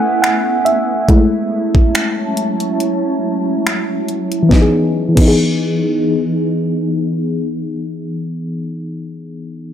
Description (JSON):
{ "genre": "contemporary R&B", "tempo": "70 BPM", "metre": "4/4", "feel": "swing 54% on 16ths", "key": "E major", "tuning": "A4 = 441 Hz", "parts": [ { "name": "FM electric piano with tremolo", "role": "accompaniment", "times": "0.0-9.7 s", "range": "E3 to G#5", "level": "-16 LUFS", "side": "left 1 dB", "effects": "low-pass filter" }, { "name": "granular cloud pad", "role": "sustained chords", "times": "0.0-8.5 s", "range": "E3 to A5", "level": "-20 LUFS", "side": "right 2 dB", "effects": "built-in reverb, low-pass filter" }, { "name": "smooth R&B drum kit", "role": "drums", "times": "0.2-5.4 s", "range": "crash cymbal, finger snaps, hi-hat, kick drum, snare drum", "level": "-14 LUFS", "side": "equal", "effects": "none" } ], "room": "digital ambience", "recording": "dry, gritty hardware recording, transformer saturation", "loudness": "-13 LUFS", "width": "side -9 dB against mid", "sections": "0.0-4.5 A section; 4.5-7.9 B section", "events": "FM electric piano solo 0.0-4.5; filter sweep 0.0-4.5", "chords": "0.0 B7sus4; 1.1 F#m7; 4.5 Emaj7", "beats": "0.23 | 1.08 1.94 2.80 3.66 | 4.51 5.37 6.23 7.08" }